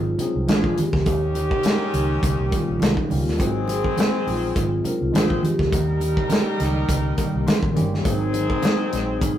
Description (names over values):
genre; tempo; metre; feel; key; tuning
lush 1970s-style soul; 103 BPM; 4/4; swing 54% on 16ths; unclear; A4 = 436 Hz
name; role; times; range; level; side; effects
vibraphone with medium mallets; melody; 0.0-9.4 s; Db4 to Ab4; -27 LUFS; equal; none
tine electric piano; accompaniment; 0.0-9.4 s; Eb3 to C6; -28 LUFS; left 2 dB; medium stereo tremolo
clear horn section; stabs; 0.0-9.4 s; Eb3 to C5; -28 LUFS; left 2 dB; none
vintage muted fingered electric bass; bass; 0.0-9.4 s; G1 to Eb2; -25 LUFS; right 1 dB; none
modern studio drum kit; drums; 0.2-9.4 s; hi-hat, kick drum, snare drum; -23 LUFS; equal; none
congas; percussion; 0.2-9.4 s; none; -29 LUFS; right 2 dB; none
mellow electric guitar; riff; 0.5-8.8 s; Gb3 to Bb4; -31 LUFS; right 3 dB; none
room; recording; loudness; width
moderate studio reverb, RT60 0.6 s; rough rehearsal-room recording, warm saturation; -19 LUFS; side -11 dB against mid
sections
0.0-9.4 A section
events
tine electric piano fill 7.2-8.1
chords
0.5 Bb7; 1.1 Eb7; 3.4 Ab7; 5.1 Bb7; 5.7 Eb7; 8.1 Ab7